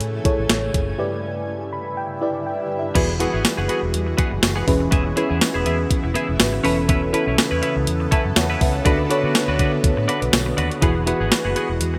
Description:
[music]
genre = 1980s-style pop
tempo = 122 BPM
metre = 4/4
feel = swing 55% on 16ths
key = unclear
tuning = A4 = 440 Hz
[part]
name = mellow FM electric piano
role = accompaniment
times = 0.0-12.0 s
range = G2 to B5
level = -25 LUFS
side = equal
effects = chorus
[part]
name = shimmering ambient pad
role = sustained chords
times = 0.0-12.0 s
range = G2 to G#5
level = -32 LUFS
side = equal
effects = chorus, built-in reverb, phaser
[part]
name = vintage muted fingered electric bass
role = bass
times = 0.0-12.0 s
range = E1 to D3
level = -27 LUFS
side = equal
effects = none
[part]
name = clean 12-bit digital drum machine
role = drums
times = 0.0-11.9 s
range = crash cymbal, hi-hat, kick drum, snare drum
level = -22 LUFS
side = equal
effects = none
[part]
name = twelve-string electric guitar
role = riff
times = 2.9-12.0 s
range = B3 to B4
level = -28 LUFS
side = equal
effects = subtle chorus
[part]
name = tambourine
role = percussion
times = 3.5-11.4 s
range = none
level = -38 LUFS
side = equal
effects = none
[sound]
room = moderate plate reverb, RT60 2.8 s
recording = bright 1980s-style digital production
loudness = -20 LUFS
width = mono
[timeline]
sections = 0.0-3.0 A section; 3.0-12.0 B section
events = break 1.0-3.0; FM electric piano fill 1.5-3.0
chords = 0.0 F#m7; 1.0 Em7/G; 3.0 Eadd9; 4.7 C#m7/E; 6.6 Aadd9/E; 8.9 D6; 10.8 Eadd9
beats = 0.01 0.50 | 0.99 1.48 1.97 2.46 | 2.96 3.45 3.94 4.43 | 4.92 5.42 5.91 6.40 | 6.89 7.38 7.87 8.37 | 8.86 9.35 9.84 10.33 | 10.82 11.32 11.81

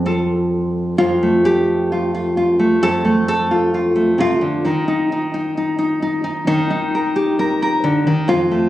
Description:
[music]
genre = folk, solo fingerstyle acoustic guitar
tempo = 66 BPM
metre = 4/4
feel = rubato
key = F mixolydian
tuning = A4 = 440 Hz
[part]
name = nylon-string guitar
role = solo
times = 0.0-8.7 s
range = F2 to C5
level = -15 LUFS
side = equal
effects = none
[sound]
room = light reverb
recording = recorded on a phone in the room, studio reverb, compression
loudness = -15 LUFS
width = side -14 dB against mid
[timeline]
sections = 1.0-8.7 A section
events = none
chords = 0.0 F; 4.7 Ebadd9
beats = 0.03 | 0.98 1.91 2.82 3.74 | 4.65 5.56 6.47 7.38 | 8.29

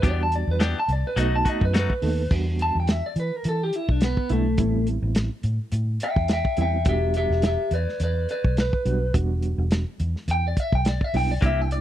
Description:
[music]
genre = straight-eighth soul blues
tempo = 105 BPM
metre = 4/4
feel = swing 56% on 16ths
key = E minor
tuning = A4 = 442 Hz
[part]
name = electric guitar through a small old amp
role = melody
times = 0.0-11.8 s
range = A3 to A5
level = -26 LUFS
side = left 1 dB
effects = none
[part]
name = reed electric piano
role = accompaniment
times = 0.0-11.8 s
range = G3 to A4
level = -30 LUFS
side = right 5 dB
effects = fast tremolo
[part]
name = clean electric guitar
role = stabs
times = 0.0-1.9, 11.4-11.6 s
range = E3 to G4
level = -30 LUFS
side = left 5 dB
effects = none
[part]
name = vintage muted fingered electric bass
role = bass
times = 0.0-11.8 s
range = E1 to E3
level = -24 LUFS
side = equal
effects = none
[part]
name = warm soul drum kit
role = drums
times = 0.0-11.8 s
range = crash cymbal, hi-hat, kick drum, snare drum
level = -25 LUFS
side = equal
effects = none
[sound]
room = studio ambience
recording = dry, close 1970s-style studio recording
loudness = -21 LUFS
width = side -12 dB against mid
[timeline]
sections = 0.0-2.3 A section; 2.3-11.8 A section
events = clean electric guitar solo 0.0-11.8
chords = 0.0 Em7; 1.2 B7; 2.3 Em7; 4.6 Am7; 6.9 Em7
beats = | 0.04 0.60 1.17 1.74 | 2.31 2.88 3.45 4.02 | 4.59 5.16 5.73 6.30 | 6.87 7.43 8.00 8.57 | 9.14 9.71 10.28 10.85 | 11.42

